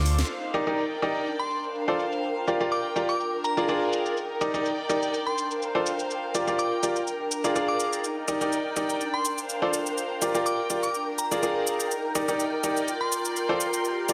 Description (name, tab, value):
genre	piano house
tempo	124 BPM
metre	4/4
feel	swing 53% on 16ths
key	G minor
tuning	A4 = 440 Hz
part	glassy synth bell	melody	0.0-13.2 s	Bb5 to D6	-35 LUFS	equal	chorus, dub echo
part	analog string pad	sustained chords	0.0-14.1 s	Bb4 to C6	-35 LUFS	equal	ensemble chorus
part	bright grand piano	riff	0.0-14.1 s	Eb4 to D5	-30 LUFS	equal	dub echo
part	dark studio string section	texture	0.0-14.1 s	D4 to C6	-35 LUFS	equal	none
part	house drum kit	drums	0.1-14.1 s	crash cymbal, hi-hat, shaker, snare drum	-36 LUFS	equal	low-pass filter on hats, studio reverb, low-pass filter on snare, low-pass filter on cymbals, low-pass filter on perc
room	moderate lush hall reverb, RT60 1.9 s, digital ambience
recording	dense, heavily limited modern master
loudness	-27 LUFS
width	mono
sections	0.3-14.1 A section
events	drum fill 0.0; filter sweep on analog synth pad 0.3-14.1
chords	0.3 Ebmaj7; 1.3 Dm7; 2.2 Gm7; 3.2 Bb7; 4.2 Ebmaj7; 5.1 Dm7; 6.1 Gm7; 7.1 Bb7; 8.0 Ebmaj7; 9.0 Dm7; 10.0 Gm7; 10.9 Bb7; 11.9 Ebmaj7; 12.9 Dm7